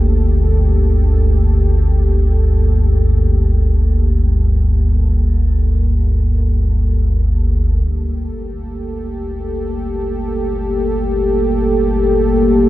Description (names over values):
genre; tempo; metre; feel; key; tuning
dark ambient drone; free time; none; none; G minor; A4 = 440 Hz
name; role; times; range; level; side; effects
dark analog pad; sustained chords; 0.0-12.7 s; Bb3 to A4; -20 LUFS; equal; chorus, shimmer reverb
deep rumbling drone; drone; 0.0-12.7 s; G1 to D2; -14 LUFS; equal; built-in reverb, lush chorus
room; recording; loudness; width
light reverb; nothing above 10.7 kHz; -13 LUFS; side -16 dB against mid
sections
0.0-7.9 A section; 7.9-12.7 B section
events
fade-out on analog synth pad 0.0-7.9; filter sweep on synth drone 7.9-12.7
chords
0.0 Gmadd9